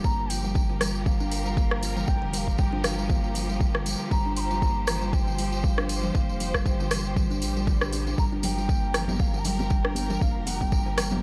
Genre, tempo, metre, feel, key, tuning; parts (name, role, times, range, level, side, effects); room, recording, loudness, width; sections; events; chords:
afro house; 118 BPM; 4/4; swing 56% on 16ths; G minor; A4 = 440 Hz
reedy bansuri; melody; 0.0-11.2 s; F5 to C6; -37 LUFS; equal
warm symphonic string section; sustained chords; 0.0-11.2 s; F3 to C5; -38 LUFS; equal; sidechain pumping
kalimba; arpeggios; 0.0-11.1 s; D3 to D4; -35 LUFS; equal; sidechain pumping, analog delay
round analog bass; bass; 0.0-11.2 s; F1 to A1; -34 LUFS; equal; sidechain pumping
electronic kick drum; drums; 0.0-10.8 s; -27 LUFS; equal; studio reverb
tambourine; percussion; 0.0-11.2 s; -40 LUFS; equal
afro-pop drum kit; drums; 0.3-11.1 s; hi-hat, rim click, toms; -33 LUFS; equal; studio reverb
swell; sound effects; 7.4-8.2 s; -43 LUFS; equal
congas; percussion; 8.4-11.2 s; -35 LUFS; equal
small room ambience; dry, gritty hardware recording, cassette tape; -26 LUFS; mono
0.0-11.2 A section
swell 7.4-8.2
0.0 Gm7